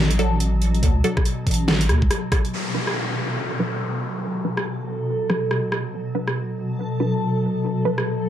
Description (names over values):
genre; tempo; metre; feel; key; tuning
deep dubstep; 141 BPM; 4/4; swing 60% on 16ths, half-time; B minor; A4 = 440 Hz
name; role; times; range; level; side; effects
granular cloud pad; sustained chords; 0.0-8.3 s; B2 to F#3; -26 LUFS; left 1 dB; built-in reverb
deep soft wobble bass; bass; 0.0-2.1 s; A1 to D2; -20 LUFS; equal; chorus
dubstep drum kit; drums; 0.1-8.0 s; hi-hat, rim click, snare drum; -24 LUFS; equal; overdrive
filtered dub chord stab; stabs; 0.2-8.0 s; F#3 to B4; -27 LUFS; right 1 dB; phaser, dub echo
electronic kick drum; drums; 0.8-2.4 s; none; -20 LUFS; equal; overdrive
downlifter; sound effects; 2.5-5.9 s; none; -29 LUFS; left 1 dB; none
backwards swelling texture; texture; 3.3-8.3 s; A4; -29 LUFS; right 2 dB; built-in reverb
room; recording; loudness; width
moderate spring reverb, RT60 1.2 s; dark, warm production; -20 LUFS; side -10 dB against mid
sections
0.0-2.5 A section; 2.5-8.3 B section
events
filter sweep on synth stab 2.5-8.3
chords
0.0 Bm